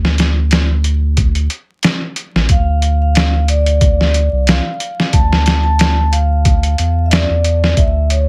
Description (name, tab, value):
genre	trip hop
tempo	91 BPM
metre	4/4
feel	swing 55% on 16ths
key	D minor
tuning	A4 = 440 Hz
part	warm sub bass	bass	0.0-8.3 s	A1 to E2	-16 LUFS	equal	none
part	trip hop sampler-style drum kit	drums	0.0-8.3 s	hi-hat, kick drum, snare drum	-17 LUFS	equal	none
part	vibraphone with soft mallets	melody	2.5-8.3 s	C#5 to A5	-22 LUFS	equal	tape echo
room	little or no reverb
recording	vinyl crackle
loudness	-14 LUFS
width	mono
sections	0.0-8.3 A section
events	none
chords	0.0 N.C.; 2.5 Dm; 7.8 A/D (rootless)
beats	0.52 1.18 1.83 | 2.49 3.15 3.81 4.47 | 5.13 5.79 6.45 7.11 | 7.77